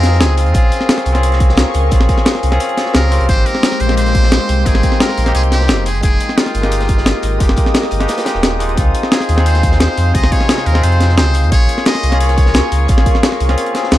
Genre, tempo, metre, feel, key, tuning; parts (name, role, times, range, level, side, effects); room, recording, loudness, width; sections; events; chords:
liquid drum and bass; 175 BPM; 4/4; straight; Bb dorian; A4 = 440 Hz
trumpet with metal mute; melody; 0.0-13.2 s; F4 to Eb5; -22 LUFS; equal; ping-pong delay
barky tine electric piano; accompaniment; 0.0-14.0 s; C3 to G5; -19 LUFS; left 2 dB; overdrive, digital delay
airy breathy pad; sustained chords; 0.0-14.0 s; Ab3 to Eb6; -24 LUFS; left 1 dB; chorus
sub bass with octave; bass; 0.0-14.0 s; Eb1 to F2; -14 LUFS; equal
breakbeat sampler-style drum kit; drums; 0.0-14.0 s; hi-hat, snare drum; -17 LUFS; equal
crunchy breakbeat drum kit; drums; 0.0-14.0 s; hi-hat, snare drum; -27 LUFS; equal
electronic kick drum; drums; 0.5-13.1 s; -14 LUFS; equal
light reverb, small room ambience; dark, warm production; -11 LUFS; side -14 dB against mid
0.0-14.0 A section
kick drops out 8.4-8.8
0.0 Dbmaj9; 0.5 Bbm7; 3.3 Abmaj7; 5.9 Fm11; 8.8 Dbmaj9; 11.5 Bbm7